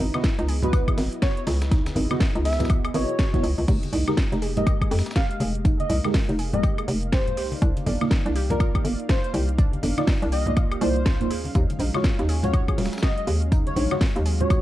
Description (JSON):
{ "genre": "deep house", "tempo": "122 BPM", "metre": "4/4", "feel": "swing 60% on 16ths", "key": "F minor", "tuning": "A4 = 440 Hz", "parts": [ { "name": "warm analog pad", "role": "sustained chords", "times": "0.0-14.6 s", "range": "Gb3 to F5", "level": "-36 LUFS", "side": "equal", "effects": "chorus, sidechain pumping" }, { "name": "warbly dusty pluck", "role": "arpeggios", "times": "0.0-14.6 s", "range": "D4 to Ab4", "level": "-34 LUFS", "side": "right 1 dB", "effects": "chorus, sidechain pumping, tape echo" }, { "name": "hollow knocking FM bass", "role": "bass", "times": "0.0-14.6 s", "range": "Eb1 to F2", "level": "-25 LUFS", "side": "equal", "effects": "tube saturation, sidechain pumping" }, { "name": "congas", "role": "percussion", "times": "0.0-14.5 s", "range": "none", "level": "-31 LUFS", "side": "left 1 dB", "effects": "none" }, { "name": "deep mellow chord stab", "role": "stabs", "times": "0.1-14.6 s", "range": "Ab3 to Eb5", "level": "-30 LUFS", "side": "right 2 dB", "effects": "chorus, phaser, sidechain pumping, tape echo" }, { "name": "breakbeat sampler-style drum kit", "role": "drums", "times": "0.1-14.6 s", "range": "hi-hat, snare drum, tambourine", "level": "-40 LUFS", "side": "left 1 dB", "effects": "high-pass filter on snare, high-pass filter on perc, high-pass filter on hats" }, { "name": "house drum kit", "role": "drums", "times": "0.1-14.6 s", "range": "crash cymbal, hi-hat, snare drum, woodblock", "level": "-32 LUFS", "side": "left 1 dB", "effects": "none" }, { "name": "electronic kick drum", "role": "drums", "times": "0.2-14.6 s", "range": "none", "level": "-22 LUFS", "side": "equal", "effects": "none" }, { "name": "airy dreamy lead", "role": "melody", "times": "0.6-14.6 s", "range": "Bb4 to F5", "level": "-31 LUFS", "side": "left 1 dB", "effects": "chorus, tape echo" } ], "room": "digital ambience", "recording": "cassette tape", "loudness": "-20 LUFS", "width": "side -14 dB against mid", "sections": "0.0-14.6 A section", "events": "none", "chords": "0.0 Dbm11; 3.7 Fm11; 7.4 Cm11; 11.3 Ebm11", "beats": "0.24 0.73 1.22 | 1.72 2.21 2.70 3.19 | 3.68 4.17 4.67 5.16 | 5.65 6.14 6.63 7.12 | 7.62 8.11 8.60 9.09 | 9.58 10.08 10.57 11.06 | 11.55 12.04 12.54 13.03 | 13.52 14.01 14.50" }